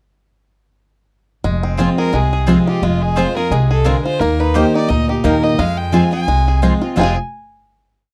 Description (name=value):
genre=bluegrass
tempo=174 BPM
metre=4/4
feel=swing 56% on 8ths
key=F dorian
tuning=A4 = 440 Hz
part: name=picked steel-string acoustic guitar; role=accompaniment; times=1.4-7.1 s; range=F2 to G4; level=-19 LUFS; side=equal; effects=none
part: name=bluegrass banjo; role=arpeggios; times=1.4-7.2 s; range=Ab3 to Ab4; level=-26 LUFS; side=equal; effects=none
part: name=upright bass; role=bass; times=1.4-7.1 s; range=F1 to F2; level=-20 LUFS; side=equal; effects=none
part: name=mandolin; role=stabs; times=1.8-7.1 s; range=Bb3 to Ab5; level=-24 LUFS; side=equal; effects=none
part: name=clear fiddle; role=melody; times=2.0-7.2 s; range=F4 to Ab5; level=-23 LUFS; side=equal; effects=none
room=light reverb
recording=dry, close 1970s-style studio recording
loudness=-16 LUFS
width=mono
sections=1.4-7.0 A section; 7.0-8.1 final chord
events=none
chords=1.4 Fm; 4.2 Eb; 5.6 Fm